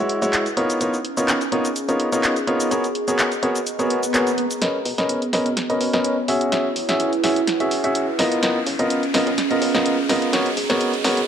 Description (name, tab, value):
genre	piano house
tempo	126 BPM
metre	4/4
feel	swing 54% on 16ths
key	unclear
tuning	A4 = 440 Hz
part	clear grand piano	riff	0.0-11.2 s	G#3 to E5	-21 LUFS	equal	low-pass filter, dub echo
part	warbly tape-like pad	texture	0.0-11.3 s	B3 to A#5	-25 LUFS	right 2 dB	chorus, built-in reverb
part	punchy analog drum machine	drums	0.1-11.3 s	cabasa, handclaps, hi-hat, snare drum	-24 LUFS	equal	high-pass filter on snare, low-pass filter on snare, high-pass filter on hats, low-pass filter on hats, high-pass filter on perc, low-pass filter on perc
part	swell and riser	sound effects	3.8-11.3 s	none	-29 LUFS	left 1 dB	none
part	solid FM bass	bass	4.6-11.3 s	E1 to C#3	-33 LUFS	equal	none
room	wet lush hall reverb, RT60 2.1 s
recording	dark, warm production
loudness	-18 LUFS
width	side -8 dB against mid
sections	0.0-4.6 A section; 4.6-11.3 B section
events	swell 3.8-4.6; build-up 4.6-11.3; drum fill 4.6-11.3; riser 4.6-11.3; filter sweep on grand piano 4.6-11.3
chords	0.0 E69; 0.6 C#13; 2.7 Bmaj9; 6.3 E69; 8.2 C#13; 10.3 G#m11